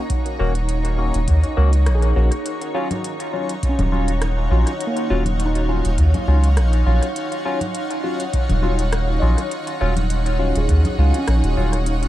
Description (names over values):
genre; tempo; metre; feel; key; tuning
ambient dub; 102 BPM; 4/4; swing 54% on 16ths; Eb minor; A4 = 440 Hz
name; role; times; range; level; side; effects
granular cloud pad; sustained chords; 0.0-12.1 s; Eb4 to Bb5; -26 LUFS; equal; built-in reverb
handpan; arpeggios; 0.0-12.1 s; Bb3 to Eb5; -31 LUFS; right 2 dB; dub echo
electronic kick drum; drums; 0.1-10.8 s; none; -23 LUFS; equal; overdrive, small room ambience
organic electronic drum kit; drums; 0.1-12.1 s; congas, hi-hat, rim click; -31 LUFS; left 1 dB; small room ambience, dub echo
barky tine electric piano; stabs; 0.4-11.8 s; Gb3 to Gb4; -26 LUFS; left 2 dB; overdrive, phaser, dub echo
soft dub sub bass; bass; 0.4-12.1 s; Eb1 to Eb2; -17 LUFS; equal; none
room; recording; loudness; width
little or no reverb; none; -17 LUFS; side -14 dB against mid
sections
0.0-2.5 A section; 2.5-12.1 B section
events
band accent 1.9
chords
0.0 Gb/Eb; 2.5 Ebm9